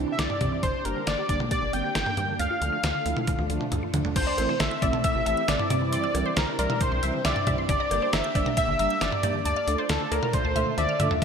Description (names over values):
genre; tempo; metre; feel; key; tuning
synth-pop; 136 BPM; 4/4; straight; unclear; A4 = 440 Hz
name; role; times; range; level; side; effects
mellow synth brass; accompaniment; 0.0-11.2 s; D3 to A4; -33 LUFS; right 4 dB; chorus
soft string machine; sustained chords; 0.0-11.2 s; C3 to G4; -35 LUFS; right 1 dB; ensemble chorus
resonant blip pluck; arpeggios; 0.0-11.2 s; C3 to G6; -36 LUFS; equal; phaser, digital delay
rubbery square bass; bass; 0.0-11.2 s; G1 to D3; -30 LUFS; equal; none
octave-doubled lead; melody; 0.1-11.2 s; A4 to G5; -27 LUFS; left 1 dB; chorus, digital delay
detuned 8-bit digital drum machine; drums; 0.2-11.2 s; cowbell, crash cymbal, hi-hat, kick drum, snare drum, toms; -28 LUFS; equal; overdrive
wide unison pluck; second line; 4.3-11.1 s; C5 to E5; -32 LUFS; left 1 dB; wide subtle chorus, digital delay
room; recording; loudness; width
moderate lush hall reverb, RT60 1.6 s, digital ambience; bright 1980s-style digital production; -23 LUFS; side -6 dB against mid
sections
0.0-4.2 A section; 4.2-11.2 B section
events
drum fill 3.3-4.2, 10.8-11.2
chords
0.0 Cadd9; 0.6 Gm; 2.4 Dm; 4.2 Am; 5.7 Cadd9; 7.7 Gm; 9.5 Dm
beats
0.19 | 0.63 1.07 1.51 1.95 | 2.40 2.84 3.28 3.72 | 4.16 4.60 5.04 5.48 | 5.92 6.37 6.81 7.25 | 7.69 8.13 8.57 9.01 | 9.45 9.89 10.34 10.78 | 11.22